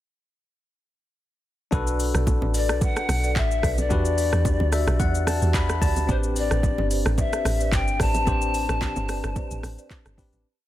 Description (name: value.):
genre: amapiano.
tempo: 110 BPM.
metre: 4/4.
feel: swing 55% on 16ths.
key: A dorian.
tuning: A4 = 440 Hz.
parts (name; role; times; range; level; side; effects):
barky tine electric piano; accompaniment; 1.7-10.5 s; C4 to B5; -30 LUFS; left 4 dB; none.
marimba with medium mallets; stabs; 1.7-10.4 s; F#4 to D5; -34 LUFS; right 7 dB; tape echo.
deep log drum bass; bass; 1.7-10.4 s; G1 to E2; -24 LUFS; equal; none.
smooth R&B drum kit; drums; 1.7-10.4 s; handclaps, hi-hat, kick drum, rim click, shaker; -26 LUFS; equal; none.
congas and bongos; percussion; 1.7-10.4 s; none; -32 LUFS; right 2 dB; none.
reedy pan flute; melody; 2.5-9.6 s; C5 to A5; -28 LUFS; left 4 dB; tape echo.
room: small room ambience.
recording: dense, heavily limited modern master.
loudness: -20 LUFS.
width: side -13 dB against mid.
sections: 1.7-10.5 drop.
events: drop 1.7-10.5; tine electric piano fill 4.5-6.1; fade-out 8.3-10.5.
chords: 1.7 Bm7; 3.9 Em9; 6.1 Am11.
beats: | 1.72 2.27 2.81 3.36 | 3.91 4.45 5.00 5.54 | 6.09 6.63 7.18 7.72 | 8.27 8.81 9.36 9.91.